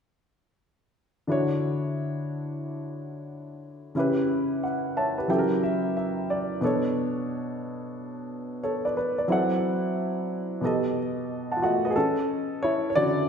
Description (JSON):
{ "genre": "R&B", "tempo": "90 BPM", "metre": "4/4", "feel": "swing 64% on 16ths", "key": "D major", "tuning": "A4 = 440 Hz", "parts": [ { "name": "warm baby grand piano", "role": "solo", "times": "1.3-13.3 s", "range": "B2 to A5", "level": "-25 LUFS", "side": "equal", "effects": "none" } ], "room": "wet scoring stage reverb, RT60 1.6 s", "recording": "recorded in a church or concert hall", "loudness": "-24 LUFS", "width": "side -7 dB against mid", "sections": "1.3-11.9 A section; 11.9-13.3 B section", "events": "grand piano fill 4.6-6.6; grand piano solo 11.9-13.3", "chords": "1.3 Dmaj9; 3.9 C#m7b5; 5.3 F#7b9; 6.6 Bm9; 9.3 F#m7b5; 10.6 B7b13; 11.9 Dmaj9", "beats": "| 1.28 1.95 2.62 3.28 | 3.95 4.62 5.28 5.95 | 6.62 7.28 7.95 8.62 | 9.28 9.95 10.62 11.28 | 11.95 12.62 13.28" }